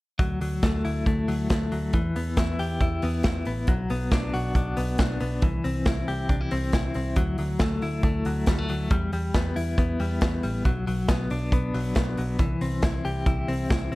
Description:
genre	jangly indie pop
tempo	138 BPM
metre	4/4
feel	straight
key	D mixolydian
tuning	A4 = 442 Hz
part	clean electric guitar	arpeggios	0.2-14.0 s	E3 to G4	-28 LUFS	left 2 dB	tremolo
part	vintage muted picked electric bass	bass	0.2-14.0 s	A1 to E2	-29 LUFS	equal	none
part	modern studio drum kit	drums	0.2-14.0 s	hi-hat, kick drum, snare drum	-25 LUFS	equal	none
room	light reverb, studio ambience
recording	none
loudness	-23 LUFS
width	side -20 dB against mid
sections	0.2-14.0 A section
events	none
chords	0.2 Dadd9; 1.9 Em; 3.7 Bm; 5.4 C; 7.2 Dadd9; 8.9 Em; 10.7 Bm; 12.4 C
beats	| 0.20 0.63 1.07 1.50 | 1.94 2.38 2.81 3.25 | 3.68 4.12 4.55 4.99 | 5.42 5.86 6.30 6.73 | 7.17 7.60 8.04 8.47 | 8.91 9.35 9.78 10.22 | 10.65 11.09 11.52 11.96 | 12.40 12.83 13.27 13.70

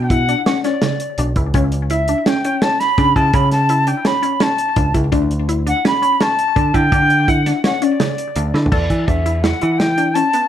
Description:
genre	progressive instrumental, band music in an uneven meter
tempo	167 BPM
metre	5/4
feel	straight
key	E dorian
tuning	A4 = 440 Hz
part	jazz flute	melody	0.0-10.5 s	D5 to B5	-17 LUFS	equal	plate reverb
part	picked electric bass	bass	0.0-10.2 s	B1 to E3	-17 LUFS	equal	none
part	resonant blip pluck	arpeggios	0.1-10.4 s	C#3 to A4	-21 LUFS	left 2 dB	phaser, ping-pong delay
part	warm soul drum kit	drums	0.1-10.4 s	crash cymbal, hi-hat, kick drum, snare drum, toms	-19 LUFS	equal	none
room	moderate studio reverb, RT60 0.5 s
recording	none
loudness	-14 LUFS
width	side -10 dB against mid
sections	0.0-8.7 A section; 8.7-10.5 B section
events	drum fill 8.5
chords	0.0 Bm; 1.5 A/C#; 5.1 N.C.; 8.7 Em9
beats	0.11 0.47 0.82 1.18 | 1.54 1.90 2.26 2.62 2.98 | 3.34 3.69 4.05 4.41 4.77 | 5.13 5.49 5.85 6.21 6.57 | 6.92 7.28 7.64 8.00 8.36 | 8.72 9.08 9.44 9.80 10.16

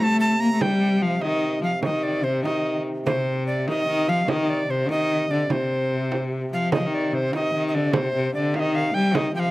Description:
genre	medieval dance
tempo	98 BPM (dotted quarters)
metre	6/8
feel	straight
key	C dorian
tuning	A4 = 442 Hz
part	bright tenor recorder	melody	0.0-9.5 s	C5 to Bb5	-25 LUFS	right 1 dB	none
part	rich cello	second line	0.0-9.5 s	C3 to Bb3	-23 LUFS	left 2 dB	none
part	pedal harmonium	drone	0.0-9.5 s	C3	-32 LUFS	right 1 dB	none
part	frame drum	percussion	0.0-9.3 s	none	-26 LUFS	right 3 dB	none
room	light reverb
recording	recorded outdoors, with no room sound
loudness	-20 LUFS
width	side -18 dB against mid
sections	0.0-6.7 A section; 6.7-9.5 A section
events	none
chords	none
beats	0.00 | 0.61 1.23 | 1.84 2.45 | 3.06 3.67 | 4.28 4.89 | 5.50 6.11 | 6.72 7.33 | 7.94 8.54 | 9.15

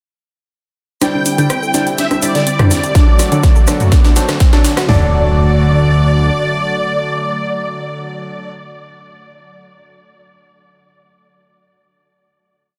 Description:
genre	progressive house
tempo	124 BPM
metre	4/4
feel	straight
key	D mixolydian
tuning	A4 = 440 Hz
part	soft supersaw	melody	1.0-8.5 s	D5 to G5	-23 LUFS	equal	ensemble chorus, delay
part	clear chamber violin section	second line	1.0-8.5 s	D5 to G5	-31 LUFS	equal	sidechain pumping, delay
part	warm analog pad	sustained chords	1.0-8.5 s	D3 to F#4	-25 LUFS	equal	chorus, tremolo, sidechain pumping
part	unison pluck	arpeggios	1.0-5.1 s	D3 to A4	-23 LUFS	equal	sidechain pumping, delay
part	warm grand piano	stabs	1.0-8.5 s	F#3 to D5	-25 LUFS	equal	sidechain pumping, low-pass filter, delay
part	big-room dance drum kit	drums	1.0-4.9 s	hi-hat, snare drum	-25 LUFS	equal	high-pass filter on snare, high-pass filter on hats, high-pass filter on room
part	egg shaker	percussion	1.0-4.9 s	none	-28 LUFS	equal	none
part	punchy analog drum machine	percussion	1.0-4.9 s	congas, rim click, toms	-20 LUFS	equal	soft clipping on snare, sidechain pumping on snare, sidechain pumping on perc, sidechain pumping on toms
part	riser and impact	sound effects	3.2-8.5 s	none	-29 LUFS	equal	none
part	fat analog bass	bass	1.1-6.3 s	G1 to D2	-17 LUFS	equal	sidechain pumping, high-pass filter
part	big-room dance drum kit	drums	3.0-5.0 s	kick drum, snare drum, toms	-12 LUFS	equal	none
room	light reverb, digital ambience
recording	dense, heavily limited modern master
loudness	-13 LUFS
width	mono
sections	1.0-4.9 build; 4.9-8.8 final chord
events	build-up 1.0-4.9; drum fill 1.0-4.9; filter sweep on synth pluck 1.0-4.9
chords	1.0 Cadd9; 3.0 D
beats	| 1.02 1.50 1.98 2.47 | 2.95 3.44 3.92 4.40 | 4.89 5.37 5.86 6.34 | 6.82 7.31 7.79 8.27

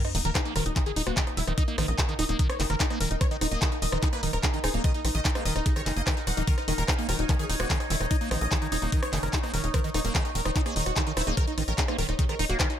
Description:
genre	psychedelic trance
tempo	147 BPM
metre	4/4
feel	straight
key	Eb minor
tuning	A4 = 438 Hz
part	supersaw stab	melody	0.0-12.7 s	Eb4 to Gb5	-33 LUFS	equal	phaser, sidechain pumping, ping-pong delay
part	overtone-sweeping drone	sustained chords	1.0-12.8 s	Eb4 to Db5	-37 LUFS	right 1 dB	chorus, built-in reverb, sidechain pumping
part	liquid acid bass	riff	0.0-12.7 s	Eb3 to Eb4	-33 LUFS	right 1 dB	phaser, auto-pan, sidechain pumping, digital delay
part	drum and bass drum kit	drums	0.0-12.8 s	handclaps, hi-hat, rim click	-31 LUFS	left 1 dB	none
part	sub drop	sound effects	0.0-1.6 s	none	-39 LUFS	equal	none
part	vowel-sweep wobble bass	second line	0.1-12.4 s	Gb3 to Bb3	-46 LUFS	left 4 dB	none
part	tight sequencer bass	bass	0.1-12.6 s	Eb1 to Bb1	-29 LUFS	equal	none
part	electronic kick drum	drums	0.4-12.7 s	none	-26 LUFS	equal	none
room	digital ambience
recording	none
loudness	-24 LUFS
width	side -10 dB against mid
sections	0.0-12.8 A section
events	impact 0.0-1.6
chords	0.0 Eb5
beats	0.35 0.76 1.17 | 1.58 1.99 2.39 2.80 | 3.21 3.62 4.03 4.43 | 4.84 5.25 5.66 6.07 | 6.47 6.88 7.29 7.70 | 8.11 8.52 8.92 9.33 | 9.74 10.15 10.56 10.96 | 11.37 11.78 12.19 12.60

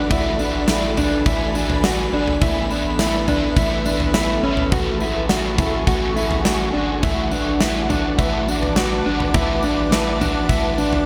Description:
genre	dream pop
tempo	104 BPM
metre	4/4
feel	straight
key	unclear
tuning	A4 = 440 Hz
part	crunchy overdriven guitar	accompaniment	0.0-11.1 s	A3 to B4	-27 LUFS	equal	harmonic tremolo, analog chorus
part	ethereal airy pad	sustained chords	0.0-11.1 s	A4 to D6	-29 LUFS	equal	ensemble chorus, built-in reverb
part	mellow electric guitar	arpeggios	0.0-11.1 s	C#4 to F#4	-24 LUFS	equal	analog chorus, delay
part	round analog bass	bass	0.0-11.1 s	G#1 to A1	-29 LUFS	equal	none
part	huge arena drum kit	drums	0.1-11.1 s	kick drum, snare drum, tambourine, toms	-24 LUFS	equal	gated reverb
room	moderate plate reverb, RT60 1.7 s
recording	bright 1980s-style digital production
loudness	-19 LUFS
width	mono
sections	0.0-11.1 A section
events	none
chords	0.0 Bm7; 2.4 Asus2; 4.7 F#madd9/A; 7.0 Bm7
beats	| 0.11 0.69 1.26 1.84 | 2.42 3.00 3.57 4.15 | 4.72 5.30 5.88 6.46 | 7.03 7.61 8.19 8.76 | 9.34 9.92 10.49

